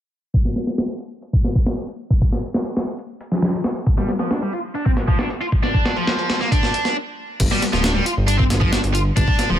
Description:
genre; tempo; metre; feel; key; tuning
breakbeat, breaks; 136 BPM; 4/4; straight; unclear; A4 = 440 Hz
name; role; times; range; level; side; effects
breakbeat sampler-style drum kit; drums; 0.3-9.5 s; crash cymbal, hi-hat, kick drum, snare drum; -19 LUFS; equal; overdrive, low-pass filter on hats, low-pass filter on kick, low-pass filter on snare, low-pass filter on cymbals, low-pass filter on room
tight distorted guitar; riff; 4.0-9.6 s; F3 to F4; -22 LUFS; equal; distortion, tube saturation, tape echo
dark detuned saw bass; bass; 7.4-9.6 s; D1 to G1; -20 LUFS; equal; none
room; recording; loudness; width
digital ambience; low-pass filter; -18 LUFS; side -11 dB against mid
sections
0.3-7.4 A section; 7.4-9.6 B section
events
filter sweep on drum 0.3-7.4; filter sweep 0.3-7.4; stop 7.0-7.4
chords
0.3 G7(no3) (rootless); 7.4 G7(no3)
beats
| 0.34 0.78 1.22 1.67 | 2.11 2.55 2.99 3.43 | 3.87 4.31 4.75 5.19 | 5.63 6.08 6.52 6.96 | 7.40 7.84 8.28 8.72 | 9.16

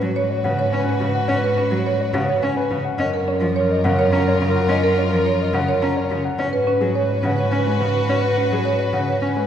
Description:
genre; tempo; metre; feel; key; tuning
classical, minimalist pattern music; 106 BPM; 3/4; straight; F# major; A4 = 440 Hz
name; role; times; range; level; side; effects
dark concert grand piano; melody; 0.0-9.5 s; G#4 to A#5; -26 LUFS; left 4 dB; none
mellow clarinet; second line; 0.0-9.5 s; A#4 to B4; -27 LUFS; right 2 dB; none
rich cello; accompaniment; 0.0-9.5 s; C#3 to C#4; -24 LUFS; left 1 dB; none
rich chamber violin section; sustained chords; 0.0-9.5 s; E#4 to B4; -27 LUFS; left 2 dB; none
buzzing marimba with medium mallets; arpeggios; 0.0-9.4 s; C#4 to C#5; -23 LUFS; right 2 dB; none
rich double bass; bass; 0.0-9.5 s; F#2 to G#2; -24 LUFS; right 1 dB; none
room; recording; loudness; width
wet scoring stage reverb, RT60 1.5 s; recorded in a church or concert hall; -17 LUFS; side -9 dB against mid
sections
0.0-9.5 A section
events
none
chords
0.0 C#7sus4/G#; 3.0 F#maj7; 6.4 G#m7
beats
0.16 0.73 | 1.29 1.86 2.43 | 2.99 3.56 4.12 | 4.69 5.26 5.82 | 6.39 6.96 7.52 | 8.09 8.65 9.22

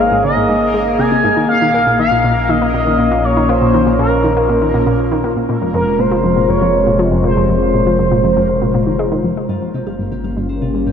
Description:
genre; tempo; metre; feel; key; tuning
ambient, sequencer-driven space music; 120 BPM; 4/4; straight; F minor; A4 = 443 Hz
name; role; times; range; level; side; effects
expressive synth lead; melody; 0.0-9.0 s; Bb4 to Ab5; -16 LUFS; equal; wide subtle chorus, ping-pong delay
sweeping resonant pad; sustained chords; 0.0-10.9 s; Bb2 to Ab4; -17 LUFS; left 1 dB; chorus
analog pluck; riff; 0.0-10.9 s; F2 to Bb3; -18 LUFS; equal; chorus, ping-pong delay
warm sub bass; bass; 0.0-10.9 s; F1 to Bb1; -23 LUFS; equal; none
bubbling stepped-filter texture; texture; 0.0-9.5 s; Bb3 to Bb4; -26 LUFS; left 1 dB; chorus, built-in reverb
Celtic harp; arpeggios; 9.5-10.9 s; F4 to F5; -41 LUFS; right 2 dB; auto-pan, ping-pong delay
room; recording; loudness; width
wet cathedral reverb, RT60 6.8 s; in a vast, echoing space; -12 LUFS; side -7 dB against mid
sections
0.0-9.5 A section; 9.5-10.9 B section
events
fade-in on sub bass 0.0-9.5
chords
0.0 Absus2; 1.5 Bbm; 5.5 Fm; 9.5 Gdim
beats
0.49 0.99 | 1.49 1.99 2.49 2.99 | 3.49 3.99 4.49 4.99 | 5.49 5.99 6.49 6.99 | 7.49 7.99 8.49 8.99 | 9.49 9.99 10.49

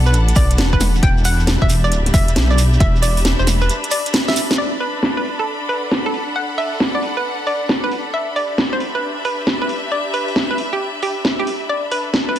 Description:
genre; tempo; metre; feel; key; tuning
UK garage, two-step garage; 135 BPM; 4/4; swing 66% on 16ths; E minor; A4 = 440 Hz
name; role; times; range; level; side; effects
dark detuned saw bass; bass; 0.0-3.7 s; D1 to B1; -16 LUFS; equal; none
clear studio string section; texture; 0.0-12.4 s; D4 to B5; -25 LUFS; left 1 dB; sidechain pumping
hollow square pluck; melody; 0.1-12.4 s; G4 to G5; -22 LUFS; right 1 dB; chorus, vintage 12-bit sampler grit, ping-pong delay
house drum kit; drums; 0.1-12.4 s; hi-hat, snare drum; -20 LUFS; equal; overdrive, low-pass filter on hats, low-pass filter on snare, low-pass filter on room
shekere; percussion; 0.1-4.6 s; none; -29 LUFS; right 5 dB; none
electronic kick drum; drums; 0.4-2.9 s; none; -17 LUFS; equal; overdrive
room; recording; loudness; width
light reverb; dense, heavily limited modern master; -15 LUFS; side -11 dB against mid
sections
0.0-4.6 A section; 4.6-12.4 B section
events
break 3.7-4.6; drum fill 4.2-4.6; band accent 4.5; filter sweep on drum 4.6-12.4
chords
0.0 Bm7; 0.8 Em7; 4.6 Bm7; 7.9 Em7; 11.7 Bm7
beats
0.14 0.58 | 1.03 1.47 1.92 2.36 | 2.81 3.25 3.69 4.14 | 4.58 5.03 5.47 5.92 | 6.36 6.80 7.25 7.69 | 8.14 8.58 9.03 9.47 | 9.92 10.36 10.80 11.25 | 11.69 12.14

